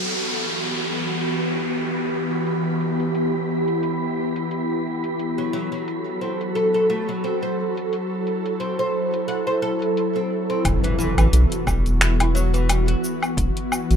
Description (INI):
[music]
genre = organic downtempo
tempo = 88 BPM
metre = 4/4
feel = swing 55% on 16ths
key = E minor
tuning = A4 = 440 Hz
[part]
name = ethereal airy pad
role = sustained chords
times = 0.0-14.0 s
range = E3 to A4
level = -23 LUFS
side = equal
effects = ensemble chorus, built-in reverb, sidechain pumping
[part]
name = downlifter and impact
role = sound effects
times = 0.0-5.2, 10.6-13.4 s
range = none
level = -28 LUFS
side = equal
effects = none
[part]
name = wind-like tuned noise texture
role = texture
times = 0.1-10.7 s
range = B5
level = -36 LUFS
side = right 4 dB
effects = built-in reverb
[part]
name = afro-pop drum kit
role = drums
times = 0.1-14.0 s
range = cabasa, finger snaps, hi-hat, woodblock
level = -24 LUFS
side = left 1 dB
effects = low-pass filter on perc, low-pass filter on snare, low-pass filter on hats
[part]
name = oud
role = arpeggios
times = 5.4-13.5 s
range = E3 to F#5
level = -26 LUFS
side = equal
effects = digital delay
[part]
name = round analog bass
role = bass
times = 10.6-14.0 s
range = E1 to B1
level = -18 LUFS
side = equal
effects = sidechain pumping
[part]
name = electronic kick drum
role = drums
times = 10.6-13.5 s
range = none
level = -27 LUFS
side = equal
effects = overdrive
[sound]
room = moderate studio reverb, RT60 0.5 s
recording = rough home demo mix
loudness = -20 LUFS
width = side -7 dB against mid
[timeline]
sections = 0.0-10.6 A section; 10.6-14.0 B section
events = impact 10.6-13.4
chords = 0.0 Emadd9; 5.2 F#dim; 10.6 Esus2